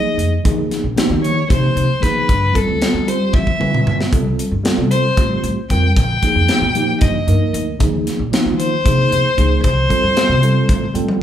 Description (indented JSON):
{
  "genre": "electric jazz fusion",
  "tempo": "228 BPM (eighths)",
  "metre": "7/8",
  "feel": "straight",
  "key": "unclear",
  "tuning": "A4 = 440 Hz",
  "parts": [
    { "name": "rich violin", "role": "melody", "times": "0.0-10.9 s", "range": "A4 to G5", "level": "-19 LUFS", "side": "left 2 dB", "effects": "none" },
    { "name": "mellow tine electric piano", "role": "accompaniment", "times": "0.0-11.2 s", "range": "F3 to G5", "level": "-20 LUFS", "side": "right 1 dB", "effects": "medium stereo tremolo" },
    { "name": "upright bass", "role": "bass", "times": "0.2-11.0 s", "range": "Bb1 to G3", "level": "-19 LUFS", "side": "equal", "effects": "none" },
    { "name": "crisp fusion drum kit", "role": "drums", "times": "0.2-11.2 s", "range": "hi-hat, kick drum, snare drum, toms", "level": "-18 LUFS", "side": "equal", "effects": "none" }
  ],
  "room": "moderate large studio reverb, RT60 1.3 s",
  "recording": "band playing live in one room",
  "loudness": "-13 LUFS",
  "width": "side -10 dB against mid",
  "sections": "0.0-11.2 A section",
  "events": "drum fill 3.3-4.1; tine electric piano fill 10.7-11.2",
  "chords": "0.4 Ebsus24; 2.3 G13sus4; 4.1 C7sus4; 6.0 Bb7sus4; 7.8 Ebsus4; 9.6 Csus4"
}